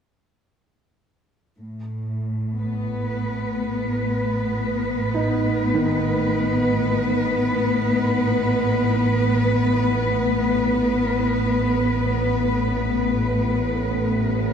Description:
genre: dark ambient drone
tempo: free time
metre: none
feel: none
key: unclear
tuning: A4 = 440 Hz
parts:
  - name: warm symphonic cello section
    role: sustained chords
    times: 1.6-14.5 s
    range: A2 to B4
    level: -20 LUFS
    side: equal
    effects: none
  - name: analog drone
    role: drone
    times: 2.9-14.5 s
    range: A1 to A2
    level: -30 LUFS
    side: right 1 dB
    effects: chorus
  - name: warm baby grand piano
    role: arpeggios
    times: 5.1-14.5 s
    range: D#3 to D#4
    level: -29 LUFS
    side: right 3 dB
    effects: analog chorus, tape echo
room: wet cathedral reverb, RT60 5.7 s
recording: dreamy mix soaked in reverb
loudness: -19 LUFS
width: side -7 dB against mid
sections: 1.6-14.5 A section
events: fade-in on synth drone 1.6-14.5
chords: 1.6 Asus2

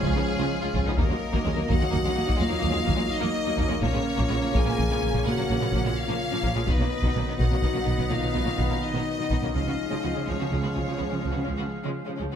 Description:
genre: cinematic, epic orchestral film score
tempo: 84 BPM (dotted quarters)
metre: 12/8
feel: straight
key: Eb minor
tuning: A4 = 440 Hz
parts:
  - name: bright symphonic violin section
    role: melody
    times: 0.0-11.7 s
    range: Ab4 to Ab5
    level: -32 LUFS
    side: left 4 dB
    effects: none
  - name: warm symphonic violin section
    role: second line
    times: 0.0-12.4 s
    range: Ab3 to Gb4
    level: -34 LUFS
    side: left 2 dB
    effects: none
  - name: brilliant trombone section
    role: sustained chords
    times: 0.0-12.2 s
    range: Db3 to Db4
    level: -33 LUFS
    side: right 4 dB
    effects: none
  - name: dark French horn section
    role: sustained chords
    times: 0.0-11.7 s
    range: Ab3 to Ab4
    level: -32 LUFS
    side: left 4 dB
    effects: none
  - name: warm woodwind section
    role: sustained chords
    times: 0.0-12.2 s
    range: F#3 to F5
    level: -36 LUFS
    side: left 2 dB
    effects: none
  - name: dark symphonic cello section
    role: bass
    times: 0.0-12.3 s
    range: Db2 to Db3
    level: -31 LUFS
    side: right 2 dB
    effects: none
  - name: rich symphonic double bass section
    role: bass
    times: 0.0-12.3 s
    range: Bb1 to Eb2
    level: -31 LUFS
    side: right 2 dB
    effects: none
  - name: taiko ensemble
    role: drums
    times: 0.0-9.8 s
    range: none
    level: -29 LUFS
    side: equal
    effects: none
  - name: warm symphonic viola section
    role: accompaniment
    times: 0.1-12.3 s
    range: Db3 to Bb3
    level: -35 LUFS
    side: right 2 dB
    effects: none
room: moderate scoring stage reverb, RT60 1.6 s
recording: none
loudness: -23 LUFS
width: side -8 dB against mid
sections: 0.0-12.4 A section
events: none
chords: 0.0 Db; 1.0 Ebm; 3.8 Bbm; 6.7 B; 9.5 Db

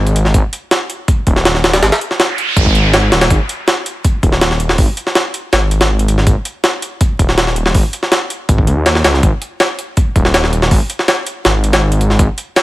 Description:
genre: drum and bass, jungle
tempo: 162 BPM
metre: 4/4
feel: straight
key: unclear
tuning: A4 = 439 Hz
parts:
  - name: detuned saw bass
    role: bass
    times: 0.0-12.3 s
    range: D#1 to D#2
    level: -14 LUFS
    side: equal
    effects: none
  - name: jungle sampler-style drum kit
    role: drums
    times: 0.1-12.6 s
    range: hi-hat, kick drum, snare drum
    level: -12 LUFS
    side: equal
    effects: overdrive, studio reverb
  - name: noise sweep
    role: sound effects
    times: 2.1-3.3 s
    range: none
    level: -18 LUFS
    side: right 2 dB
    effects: none
room: digital ambience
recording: vinyl crackle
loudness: -11 LUFS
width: side -17 dB against mid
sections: 0.0-12.6 A section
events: noise sweep 2.1-3.3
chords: none

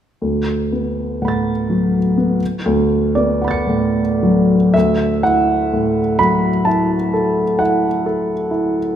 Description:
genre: classical, impressionist solo piano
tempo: 35-44 BPM (dotted quarters)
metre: 9/8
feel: rubato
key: D major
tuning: A4 = 439 Hz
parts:
  - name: clear grand piano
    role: solo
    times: 0.2-9.0 s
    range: D2 to C#7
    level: -14 LUFS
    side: equal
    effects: none
room: moderate recital hall reverb, RT60 1.6 s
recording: minimal, uncompressed stereo recording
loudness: -14 LUFS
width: side -9 dB against mid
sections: 0.2-4.7 A section; 4.7-9.0 B section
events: none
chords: 0.2 D6; 2.4 Bm9/D; 4.7 Dadd9

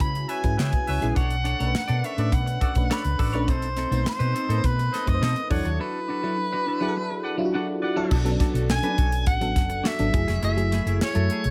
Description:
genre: polished 1980s jazz-funk pop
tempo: 104 BPM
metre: 4/4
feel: straight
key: B dorian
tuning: A4 = 442 Hz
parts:
  - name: clear soprano saxophone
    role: melody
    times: 0.0-11.5 s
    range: B4 to B5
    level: -31 LUFS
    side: equal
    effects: none
  - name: FM electric piano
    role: accompaniment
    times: 0.0-11.5 s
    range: F#3 to C5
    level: -31 LUFS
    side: equal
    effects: analog chorus
  - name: semi-hollow electric guitar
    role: riff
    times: 0.0-11.5 s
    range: A3 to D5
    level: -36 LUFS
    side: equal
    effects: subtle chorus
  - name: hollow-body short-scale fingered electric bass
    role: bass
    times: 0.0-11.5 s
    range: E#1 to C#3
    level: -28 LUFS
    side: equal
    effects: none
  - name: tight funk drum kit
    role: drums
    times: 0.0-11.5 s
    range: crash cymbal, hi-hat, kick drum, snare drum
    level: -28 LUFS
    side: equal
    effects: none
  - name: clear horn section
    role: second line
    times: 0.3-8.2 s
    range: F#4 to F#5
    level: -38 LUFS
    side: equal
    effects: none
room: light reverb, small room ambience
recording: none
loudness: -24 LUFS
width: mono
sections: 0.0-8.1 A section; 8.1-11.5 B section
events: none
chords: 0.0 C#m7; 1.2 Bm9; 3.5 B7b9; 5.5 E9sus4; 8.1 Bm7; 10.1 F#m9

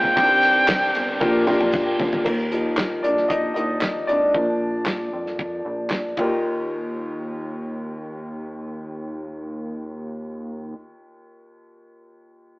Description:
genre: piano-driven pop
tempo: 115 BPM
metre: 4/4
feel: straight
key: Eb major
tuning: A4 = 440 Hz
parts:
  - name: clear trumpet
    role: melody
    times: 0.0-1.4 s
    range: G5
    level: -17 LUFS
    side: equal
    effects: none
  - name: clear upright piano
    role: accompaniment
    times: 0.0-12.6 s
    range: Eb2 to Eb5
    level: -23 LUFS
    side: left 1 dB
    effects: none
  - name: overdriven electric guitar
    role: riff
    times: 0.0-2.3 s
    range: Bb2 to C5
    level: -29 LUFS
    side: right 1 dB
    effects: none
  - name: chorused synth bass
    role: bass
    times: 0.0-10.7 s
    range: G1 to F2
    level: -32 LUFS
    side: equal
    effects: none
  - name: damped 70s drum kit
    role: drums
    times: 0.0-6.3 s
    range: crash cymbal, handclaps, hi-hat, kick drum, ride cymbal, snare drum, toms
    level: -27 LUFS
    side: equal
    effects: none
  - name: tambourine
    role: percussion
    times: 0.2-2.1 s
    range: none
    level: -47 LUFS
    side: right 2 dB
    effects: none
room: wet stone room reverb, RT60 1.0 s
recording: rough rehearsal-room recording, AM radio sound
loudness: -19 LUFS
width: side -22 dB against mid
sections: 0.0-2.3 A section; 2.3-6.4 B section; 6.4-10.6 C section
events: drum fill 1.2-2.3; upright piano solo 2.3-6.4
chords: 0.2 Cmadd9; 1.2 Bb6; 2.3 Ebadd9; 4.3 Bb; 6.2 Ebadd9

